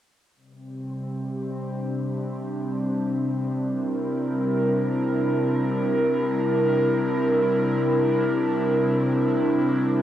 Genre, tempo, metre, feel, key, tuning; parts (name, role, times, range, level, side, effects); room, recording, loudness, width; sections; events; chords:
ambient; free time; C mixolydian; A4 = 443 Hz
airy breathy pad; sustained chords; 0.7-10.0 s; C3 to Bb4; -22 LUFS; equal; chorus, cassette tape
organ-like drone; drone; 0.8-10.0 s; C3 to G3; -30 LUFS; left 1 dB; ensemble chorus, built-in reverb, cassette tape
wet spring reverb, RT60 1.3 s; home recording on cassette; -21 LUFS; side -11 dB against mid
0.4-10.0 A section
0.4 C9